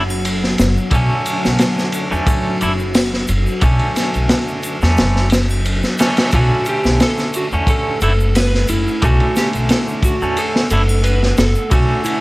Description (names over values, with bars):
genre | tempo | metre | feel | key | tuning
trip hop | 89 BPM | 4/4 | swing 53% on 16ths | B minor | A4 = 440 Hz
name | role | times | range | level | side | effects
clean electric guitar | accompaniment | 0.0-12.2 s | D3 to E4 | -22 LUFS | right 1 dB | tremolo, tape echo
deep dark ambient pad | sustained chords | 0.0-12.2 s | F#3 to F#5 | -25 LUFS | left 1 dB | chorus, built-in reverb
upright bass | bass | 0.0-11.9 s | F#1 to E2 | -18 LUFS | equal | none
egg shaker and triangle | percussion | 0.1-12.2 s | none | -34 LUFS | left 2 dB | none
crunchy breakbeat drum kit | drums | 0.2-12.2 s | kick drum, ride cymbal, snare drum | -17 LUFS | equal | none
reverse cymbal | sound effects | 5.4-6.3 s | none | -28 LUFS | equal | none
electric slide guitar | melody | 6.3-12.2 s | E4 to B4 | -21 LUFS | right 1 dB | tape echo
room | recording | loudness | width
light reverb, studio ambience | dry, gritty hardware recording, vinyl crackle | -13 LUFS | side -20 dB against mid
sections
0.0-12.2 A section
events
reverse cymbal 5.4-6.3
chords
0.0 Bm9 (rootless)